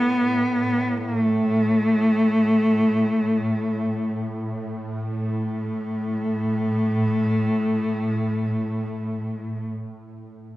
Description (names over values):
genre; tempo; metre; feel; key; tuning
caucasian folk, Caucasian lament; free time; none; none; unclear; A4 = 440 Hz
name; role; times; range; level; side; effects
clear cello; melody; 0.0-9.7 s; A3 to B3; -21 LUFS; equal; none
shimmering ambient pad; drone; 0.0-9.7 s; A2; -28 LUFS; equal; chorus, built-in reverb
room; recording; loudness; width
light reverb; none; -20 LUFS; side -16 dB against mid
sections
0.0-5.0 A section; 5.0-9.1 B section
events
slowing down 0.0-5.0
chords
none